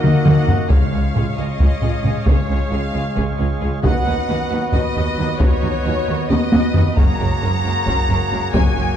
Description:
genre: cinematic, epic orchestral film score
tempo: 268 BPM (eighths)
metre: 7/8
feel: straight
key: Db mixolydian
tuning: A4 = 438 Hz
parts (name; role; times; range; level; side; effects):
- clear symphonic violin section; melody; 0.0-9.0 s; Db5 to Bb5; -25 LUFS; left 2 dB; none
- rich symphonic violin section; second line; 0.0-8.8 s; Gb4 to Gb5; -34 LUFS; left 3 dB; none
- rich symphonic viola section; accompaniment; 0.0-8.9 s; Gb3 to F4; -33 LUFS; right 2 dB; none
- dark French horn section; sustained chords; 0.0-9.0 s; Ab3 to Eb4; -37 LUFS; left 4 dB; none
- pipe organ, cornet; sustained chords; 0.0-9.0 s; Ab3 to F5; -25 LUFS; left 1 dB; none
- rich symphonic cello section; bass; 0.0-8.8 s; Db2 to Eb3; -27 LUFS; right 3 dB; none
- rich symphonic double bass section; bass; 0.0-8.8 s; Gb1 to Eb2; -23 LUFS; right 3 dB; none
- taiko ensemble; drums; 0.0-9.0 s; none; -17 LUFS; left 1 dB; none
- timpani; percussion; 0.7-1.3 s; Db3; -28 LUFS; left 1 dB; none
room: moderate scoring stage reverb, RT60 1.5 s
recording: dark, warm production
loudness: -15 LUFS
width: side -9 dB against mid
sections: 0.7-9.0 A section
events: drum fill 0.0-0.7, 6.3-7.0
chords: 0.0 Ebm; 0.7 Db; 3.8 Cb/Eb; 7.0 Gbadd9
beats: 0.03 0.25 0.47 | 0.70 0.92 1.14 1.37 1.59 1.82 2.04 | 2.26 2.49 2.71 2.94 3.16 3.38 3.61 | 3.83 4.05 4.28 4.50 4.73 4.95 5.17 | 5.40 5.62 5.85 6.07 6.29 6.52 6.74 | 6.96 7.19 7.41 7.64 7.86 8.09 8.31 | 8.53 8.76

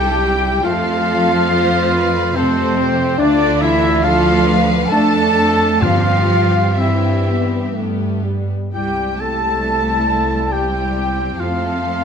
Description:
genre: classical, slow romantic movement for symphony orchestra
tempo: 61-72 BPM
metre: 3/4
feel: rubato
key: C major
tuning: A4 = 440 Hz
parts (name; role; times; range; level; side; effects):
- warm studio violin section; melody; 0.0-12.0 s; C5 to A5; -27 LUFS; left 4 dB; none
- mellow hollow flute section; second line; 0.0-12.0 s; C5 to A5; -21 LUFS; left 1 dB; none
- warm clarinet; second line; 0.0-12.0 s; C4 to A4; -24 LUFS; left 1 dB; none
- warm oboe; second line; 0.0-12.0 s; C5 to A5; -25 LUFS; equal; none
- warm studio violin section; second line; 0.0-12.0 s; E4 to C5; -26 LUFS; left 1 dB; none
- rich studio viola section; accompaniment; 0.0-12.0 s; G3 to E4; -24 LUFS; right 1 dB; none
- mellow trumpet; stabs; 0.0-12.0 s; C4 to A4; -23 LUFS; right 3 dB; none
- rich studio cello section; bass; 0.0-12.0 s; C3 to A3; -23 LUFS; right 2 dB; none
- rich studio double bass section; bass; 0.0-12.0 s; C2 to G2; -21 LUFS; right 2 dB; none
- mellow French horn section; sustained chords; 0.6-12.0 s; G3 to F4; -23 LUFS; left 5 dB; none
- timpani; percussion; 5.8-7.2 s; G2; -22 LUFS; left 1 dB; none
room: moderate scoring stage reverb, RT60 2.0 s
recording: none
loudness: -14 LUFS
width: side -7 dB against mid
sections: 0.0-12.0 A section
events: none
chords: 0.0 C; 0.7 F; 3.2 Dm; 4.9 Dm/F; 5.8 C/G; 7.8 G; 8.7 C; 11.4 F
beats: | 0.65 1.51 2.36 | 3.19 4.03 4.90 | 5.81 6.78 7.76 | 8.73 9.64 10.52 | 11.39

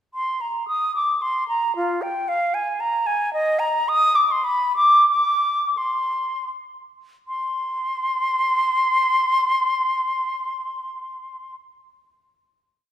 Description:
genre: classical, baroque-style fantasia for unaccompanied flute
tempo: 76-118 BPM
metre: 3/4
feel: rubato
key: C minor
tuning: A4 = 440 Hz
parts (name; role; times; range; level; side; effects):
- concert flute; solo; 0.1-11.5 s; F4 to Eb6; -19 LUFS; equal; none
room: wet scoring stage reverb, RT60 1.8 s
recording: recorded in a church or concert hall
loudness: -19 LUFS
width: side -11 dB against mid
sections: 0.1-7.3 A section; 7.3-11.9 final note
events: slowing down 2.5-7.3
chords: none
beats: | 0.15 0.69 1.22 | 1.76 2.29 2.81 | 3.34 3.88 4.45 | 5.09 5.77 6.49 | 7.27 8.04 8.80 | 9.56 10.34 11.09

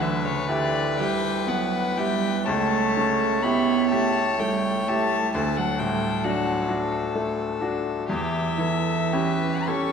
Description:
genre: classical, slow romantic movement for piano quartet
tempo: 36-46 BPM (dotted quarters)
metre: 6/8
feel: rubato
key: D major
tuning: A4 = 440 Hz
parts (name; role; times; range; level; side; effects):
- rich violin; melody; 0.0-9.9 s; C#5 to C#6; -28 LUFS; left 7 dB; none
- clear cello; second line; 0.0-9.9 s; C#3 to C#4; -26 LUFS; right 8 dB; none
- rich violin; second line; 0.0-9.9 s; G4 to C#5; -30 LUFS; left 2 dB; none
- bright baby grand piano; accompaniment; 0.0-9.9 s; C#2 to G4; -26 LUFS; left 2 dB; none
room: wet concert hall reverb, RT60 2.4 s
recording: dark, warm production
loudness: -21 LUFS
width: side -6 dB against mid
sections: 0.0-9.9 A section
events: none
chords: 0.0 Em7/D; 2.5 A7/C#; 5.3 D; 8.1 C#dim/E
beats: 0.99 | 2.46 3.91 | 5.34 6.68 | 8.09 9.66

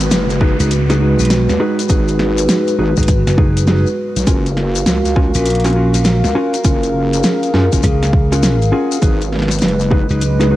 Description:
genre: glitch hop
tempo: 101 BPM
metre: 4/4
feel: swing 64% on 16ths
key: G# dorian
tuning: A4 = 441 Hz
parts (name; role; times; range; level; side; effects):
- dark analog pad; sustained chords; 0.0-10.6 s; F#3 to E#5; -19 LUFS; right 1 dB; chorus, vintage 12-bit sampler grit, sidechain pumping, cassette tape
- wobble bass; bass; 0.0-10.1 s; F#1 to F#2; -18 LUFS; equal; chorus
- pop drum kit; drums; 0.0-10.5 s; hi-hat, snare drum; -19 LUFS; equal; overdrive
- shekere; percussion; 0.0-10.5 s; none; -28 LUFS; left 12 dB; none
- downlifter; sound effects; 0.0-4.3 s; none; -30 LUFS; right 1 dB; none
- mellow electric guitar; stabs; 0.4-10.6 s; C#4 to B4; -20 LUFS; left 1 dB; sidechain pumping, cassette tape, tape echo
- electronic kick drum; drums; 0.4-10.1 s; none; -14 LUFS; equal; overdrive
- slap bass; bass; 0.6-10.6 s; F#1 to C#2; -14 LUFS; equal; none
room: light reverb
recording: home recording on cassette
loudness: -12 LUFS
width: side -15 dB against mid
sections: 0.0-10.6 A section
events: none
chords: 0.0 G#m7; 4.3 F#maj7; 9.0 G#m7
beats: 0.11 0.71 1.30 | 1.89 2.49 3.08 3.68 | 4.27 4.87 5.46 6.05 | 6.65 7.24 7.83 8.43 | 9.02 9.62 10.21

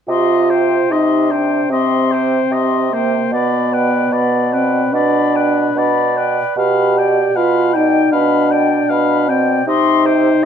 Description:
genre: classical, slow romantic movement for wind quintet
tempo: 75 BPM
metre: 4/4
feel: uneven beats, rubato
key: unclear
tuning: A4 = 440 Hz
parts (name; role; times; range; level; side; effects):
- silver concert flute; melody; 0.1-10.5 s; G5 to C6; -22 LUFS; left 14 dB; none
- warm oboe; second line; 0.1-10.4 s; B4 to G5; -22 LUFS; left 4 dB; none
- warm French horn; accompaniment; 0.1-10.5 s; Bb3 to G4; -16 LUFS; left 1 dB; none
- warm clarinet; accompaniment; 0.1-10.4 s; G4 to D5; -22 LUFS; right 12 dB; none
- mellow bassoon; bass; 0.1-10.5 s; B2 to C3; -18 LUFS; right 2 dB; none
room: light reverb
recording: none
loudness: -12 LUFS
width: side -8 dB against mid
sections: 0.1-10.5 A section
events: none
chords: 0.1 Cm; 3.3 G/B; 6.6 G7/B; 9.7 Cm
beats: | 0.10 0.92 1.71 2.52 | 3.33 4.13 4.95 5.77 | 6.58 7.37 8.13 8.91 | 9.68 10.44

